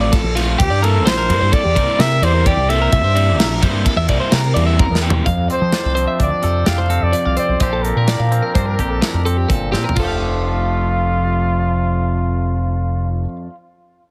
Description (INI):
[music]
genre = math rock and midwest emo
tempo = 128 BPM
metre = 5/4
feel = straight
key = F major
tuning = A4 = 440 Hz
[part]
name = twelve-string electric guitar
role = arpeggios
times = 0.0-13.4 s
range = F4 to F5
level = -26 LUFS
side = equal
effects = plate reverb
[part]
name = crunchy overdriven guitar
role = riff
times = 0.0-5.3 s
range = C3 to F4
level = -25 LUFS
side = equal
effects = none
[part]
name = growling fingered electric bass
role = bass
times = 0.0-13.2 s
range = F1 to F3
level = -20 LUFS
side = equal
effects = overdrive
[part]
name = modern studio drum kit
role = drums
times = 0.1-10.1 s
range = crash cymbal, hi-hat, kick drum, ride cymbal, snare drum, toms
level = -22 LUFS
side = equal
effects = none
[part]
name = warm trumpet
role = melody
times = 0.6-13.1 s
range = F4 to F5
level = -23 LUFS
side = equal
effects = plate reverb, digital delay
[part]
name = twangy electric guitar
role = accompaniment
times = 5.2-13.5 s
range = F2 to A4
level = -26 LUFS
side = equal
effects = plate reverb
[sound]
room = light reverb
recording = heavily compressed radio sound, multiband compression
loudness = -17 LUFS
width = mono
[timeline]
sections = 0.0-5.3 A section; 5.3-10.0 B section; 10.0-12.3 C section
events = drum fill 4.8-5.3, 9.7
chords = 0.0 F6/A; 0.6 C7; 5.3 F6; 7.6 Bb69; 10.0 F69